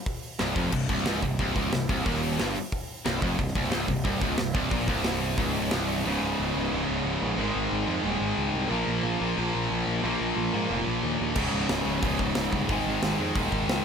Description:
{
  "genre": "heavy metal",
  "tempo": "181 BPM",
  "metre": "4/4",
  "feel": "straight",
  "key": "C phrygian",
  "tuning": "A4 = 439 Hz",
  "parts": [
    { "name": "big rock drum kit", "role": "drums", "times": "0.1-6.0, 11.4-13.8 s", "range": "crash cymbal, hi-hat, kick drum, snare drum", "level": "-30 LUFS", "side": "equal", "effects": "none" },
    { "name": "heavy high-gain guitar", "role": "riff", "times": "0.4-13.8 s", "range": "C2 to Bb3", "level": "-31 LUFS", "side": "right 11 dB", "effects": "distortion" },
    { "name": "high-gain distorted guitar", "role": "riff", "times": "0.4-13.8 s", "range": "C2 to Bb3", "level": "-31 LUFS", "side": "left 11 dB", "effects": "distortion" },
    { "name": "high-gain distorted guitar", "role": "riff", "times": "0.4-13.8 s", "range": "C2 to Bb3", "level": "-31 LUFS", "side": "equal", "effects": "distortion" },
    { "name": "fuzz picked electric bass", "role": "bass", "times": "0.4-13.8 s", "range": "C1 to Ab2", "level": "-32 LUFS", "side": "equal", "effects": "overdrive" }
  ],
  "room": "studio reverb",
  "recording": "none",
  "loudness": "-24 LUFS",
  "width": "side -6 dB against mid",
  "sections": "0.0-6.0 A section; 6.0-13.8 B section",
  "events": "none",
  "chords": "0.0 Cm; 6.0 Db5; 7.4 Ab5; 8.7 Bb5; 11.4 Db5; 12.7 Ab5"
}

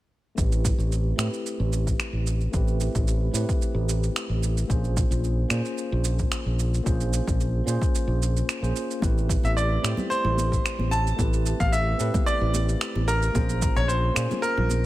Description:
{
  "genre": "sunset chillout",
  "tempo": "111 BPM",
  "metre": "4/4",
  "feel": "swing 53% on 16ths",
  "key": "unclear",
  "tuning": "A4 = 440 Hz",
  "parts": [
    { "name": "tine electric piano", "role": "accompaniment", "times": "0.3-14.9 s", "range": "A3 to C5", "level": "-31 LUFS", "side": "right 1 dB", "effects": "auto-pan, low-pass filter, ping-pong delay" },
    { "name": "fingered electric bass", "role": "bass", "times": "0.4-14.9 s", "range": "A1 to Bb2", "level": "-24 LUFS", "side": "equal", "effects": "none" },
    { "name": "electronic kick drum", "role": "drums", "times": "0.4-13.7 s", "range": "none", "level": "-26 LUFS", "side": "equal", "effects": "overdrive" },
    { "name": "electronic shaker and finger snaps", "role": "drums", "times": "0.4-14.8 s", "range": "none", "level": "-31 LUFS", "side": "right 3 dB", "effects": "overdrive" },
    { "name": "congas", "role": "percussion", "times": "9.0-14.8 s", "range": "none", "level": "-34 LUFS", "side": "equal", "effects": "none" },
    { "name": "bright baby grand piano", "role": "melody", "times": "9.4-14.9 s", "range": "Bb4 to A5", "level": "-27 LUFS", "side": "equal", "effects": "digital delay" }
  ],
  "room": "little or no reverb",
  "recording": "none",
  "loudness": "-22 LUFS",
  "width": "side -16 dB against mid",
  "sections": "0.4-14.9 A section",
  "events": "filter sweep on tine electric piano 0.4-14.9",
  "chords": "0.4 Am9; 4.7 Bbm9; 9.0 Am9; 13.3 Bbm9"
}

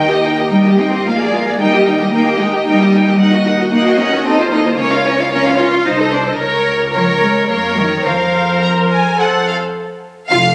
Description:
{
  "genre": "quick classical-period movement for string orchestra",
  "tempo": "111 BPM",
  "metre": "3/4",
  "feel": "rubato",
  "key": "Bb minor from 3.2 s",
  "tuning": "A4 = 440 Hz",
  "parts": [
    { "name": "rich studio violin section", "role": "melody", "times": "0.0-10.5 s", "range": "C5 to Bb5", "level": "-20 LUFS", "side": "equal", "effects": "none" },
    { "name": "dark studio violin section", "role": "second line", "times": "0.0-10.4 s", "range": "F4 to Db5", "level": "-23 LUFS", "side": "equal", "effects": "none" },
    { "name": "warm studio viola section", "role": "accompaniment", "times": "0.0-10.4 s", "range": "Db4 to C5", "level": "-19 LUFS", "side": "equal", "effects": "none" },
    { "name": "warm symphonic double bass section", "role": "bass", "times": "0.0-10.5 s", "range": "F1 to Gb2", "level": "-27 LUFS", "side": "equal", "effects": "none" },
    { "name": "warm chamber cello section", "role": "bass", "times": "0.5-10.5 s", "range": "F2 to F4", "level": "-18 LUFS", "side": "equal", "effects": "none" }
  ],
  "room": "wet recital hall reverb, RT60 1.8 s",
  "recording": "recorded on a phone in the room, studio ambience, compression",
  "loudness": "-14 LUFS",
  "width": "mono",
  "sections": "0.0-9.8 A section",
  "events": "none",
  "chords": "0.0 Eb; 1.0 Bb7; 1.6 Eb; 3.2 Ebm; 4.3 F7/Eb; 4.8 Bbm/Db; 5.9 Adim/C; 6.4 Bbm/Db; 7.5 Gb; 8.0 Fsus4; 9.2 F; 9.8 N.C."
}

